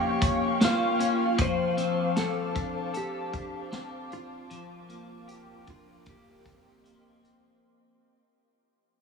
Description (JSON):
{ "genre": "dream pop", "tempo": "77 BPM", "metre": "4/4", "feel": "straight", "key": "Eb lydian", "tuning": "A4 = 439 Hz", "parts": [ { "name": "ethereal airy pad", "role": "sustained chords", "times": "0.0-7.6 s", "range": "Bb3 to D6", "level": "-31 LUFS", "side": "left 1 dB", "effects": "ensemble chorus, built-in reverb" }, { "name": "clean electric guitar", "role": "arpeggios", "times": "0.0-8.2 s", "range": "F3 to A4", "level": "-31 LUFS", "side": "left 4 dB", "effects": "lush chorus, tape echo" }, { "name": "vintage drum kit", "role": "drums", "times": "0.2-7.4 s", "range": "hi-hat, kick drum, snare drum", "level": "-28 LUFS", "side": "equal", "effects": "none" }, { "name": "clean lap steel guitar", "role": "melody", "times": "0.6-7.2 s", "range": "F4 to C5", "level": "-32 LUFS", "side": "equal", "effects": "tape echo" } ], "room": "moderate huge ambient reverb, RT60 7.3 s", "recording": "none", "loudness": "-25 LUFS", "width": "side -5 dB against mid", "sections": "0.0-7.6 A section", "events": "fade-out 0.0-7.6", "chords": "0.0 Bbm6; 1.4 F6; 4.5 Bb6; 6.1 Eb6" }